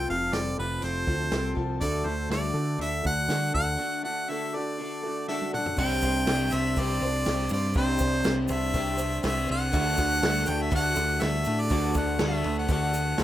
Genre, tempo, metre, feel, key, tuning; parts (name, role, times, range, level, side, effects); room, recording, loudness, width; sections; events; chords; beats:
folk rock and heartland rock; 121 BPM; 4/4; straight; D mixolydian; A4 = 441 Hz
bright harmonica; melody; 0.0-13.2 s; B4 to G5; -29 LUFS; equal; slapback echo
picked twelve-string acoustic guitar; accompaniment; 0.0-13.2 s; C3 to C5; -33 LUFS; left 3 dB
electric guitar through a small old amp; riff; 0.0-13.2 s; F2 to G4; -32 LUFS; right 1 dB
deep dub picked electric bass; bass; 0.0-13.2 s; F1 to D3; -30 LUFS; equal
vintage drum kit; drums; 0.1-13.2 s; crash cymbal, hi-hat, kick drum, ride cymbal, snare drum, toms; -31 LUFS; equal
egg shaker; percussion; 5.8-13.2 s; -43 LUFS; right 3 dB
light reverb; rough home demo mix; -24 LUFS; side -12 dB against mid
0.0-5.8 A section; 5.8-13.2 B section
break 3.8-5.8; drum fill 5.3-5.8
0.0 F; 1.8 D; 5.8 Csus2; 9.7 D
0.34 0.83 1.33 | 1.82 2.32 2.81 3.31 | 3.80 4.29 4.79 5.28 | 5.78 6.27 6.76 7.26 | 7.75 8.25 8.74 9.23 | 9.73 10.22 10.72 11.21 | 11.70 12.20 12.69 13.19